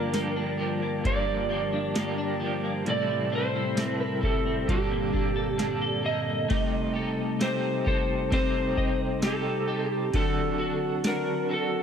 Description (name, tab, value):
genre	dream pop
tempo	66 BPM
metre	4/4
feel	straight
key	unclear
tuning	A4 = 440 Hz
part	electric slide guitar	melody	0.0-11.8 s	G4 to Eb5	-30 LUFS	right 1 dB	tape echo
part	electric guitar at the edge of break-up	accompaniment	0.0-11.8 s	G2 to A4	-34 LUFS	right 4 dB	tremolo, lush chorus
part	mellow tonewheel organ	sustained chords	0.0-11.8 s	Bb2 to A5	-32 LUFS	right 1 dB	fast rotary speaker
part	clean electric guitar	arpeggios	0.0-11.8 s	G2 to Eb5	-31 LUFS	left 3 dB	ensemble chorus, tape echo
part	booming analog drum machine	drums	0.1-11.3 s	hi-hat, kick drum, ride cymbal, snare drum, tambourine	-30 LUFS	equal	overdrive
room	light reverb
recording	none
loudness	-25 LUFS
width	side -7 dB against mid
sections	0.0-6.5 A section; 6.5-11.8 B section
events	none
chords	0.0 Gm7; 2.9 Am7; 4.7 Gmadd9; 6.5 Am7b5; 10.1 D